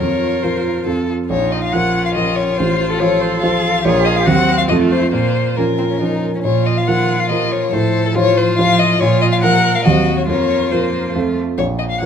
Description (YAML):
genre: quick classical-period movement for piano quartet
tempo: 140 BPM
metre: 3/4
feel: straight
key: Bb minor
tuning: A4 = 439 Hz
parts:
  - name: warm violin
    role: melody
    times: 0.0-12.1 s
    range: A4 to Gb5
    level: -18 LUFS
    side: left 6 dB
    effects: none
  - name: clear violin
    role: second line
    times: 0.0-12.1 s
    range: A3 to Db5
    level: -24 LUFS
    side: left 3 dB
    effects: none
  - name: rich cello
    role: second line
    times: 0.0-12.1 s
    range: Eb3 to A4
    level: -24 LUFS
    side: right 8 dB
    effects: none
  - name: warm baby grand piano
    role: accompaniment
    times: 0.0-12.1 s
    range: A1 to C5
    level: -16 LUFS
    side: right 2 dB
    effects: none
room: light reverb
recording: close, detailed microphones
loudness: -13 LUFS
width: side -8 dB against mid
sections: 0.0-6.4 A section; 6.4-12.1 A section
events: none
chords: 0.0 Fsus4; 0.9 F; 1.3 Bbm; 2.6 F/A; 3.8 Bbm; 4.3 Cdim/Eb; 4.7 F; 5.1 Bbm; 6.4 Bb5; 7.7 F/A; 9.0 Bb5; 9.9 Cdim/Eb; 10.3 Fsus4; 11.1 F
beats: | 0.00 0.43 0.87 | 1.30 1.73 2.16 | 2.59 3.01 3.43 | 3.85 4.27 4.70 | 5.13 5.57 6.01 | 6.45 6.88 7.30 | 7.73 8.16 8.58 | 9.00 9.43 9.85 | 10.28 10.72 11.15 | 11.58 12.01